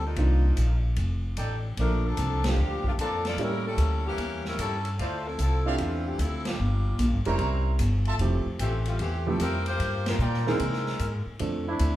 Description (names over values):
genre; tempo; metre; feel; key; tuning
jazz, big band swing; 150 BPM; 4/4; swing 66% on 8ths; F major; A4 = 441 Hz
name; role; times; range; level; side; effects
warm saxophone section; melody; 0.0-11.2 s; E3 to D5; -31 LUFS; left 2 dB; none
upright bass; bass; 0.0-12.0 s; F1 to C3; -26 LUFS; equal; none
warm baby grand piano; accompaniment; 0.2-11.6 s; Eb3 to C5; -32 LUFS; right 3 dB; none
swinging big-band drum kit; drums; 0.2-11.9 s; hi-hat, kick drum, ride cymbal, snare drum; -37 LUFS; equal; none
warm trumpet section; stabs; 1.4-10.6 s; Eb4 to Bb5; -35 LUFS; right 2 dB; none
clear trombone section; second line; 11.7-12.0 s; A3 to E4; -28 LUFS; right 1 dB; none
room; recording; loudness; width
moderate large studio reverb, RT60 0.9 s; band playing live in one room; -24 LUFS; side -14 dB against mid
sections
0.0-11.4 A section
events
band accent 2.4, 6.4, 10.0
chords
0.2 Cm11; 1.0 F13; 1.8 Bbmaj7; 3.4 A7b9; 5.0 Dm9; 6.6 Gm7; 7.4 C7b9; 8.2 Fmaj9; 9.8 Gm7; 10.6 C7alt; 11.4 F6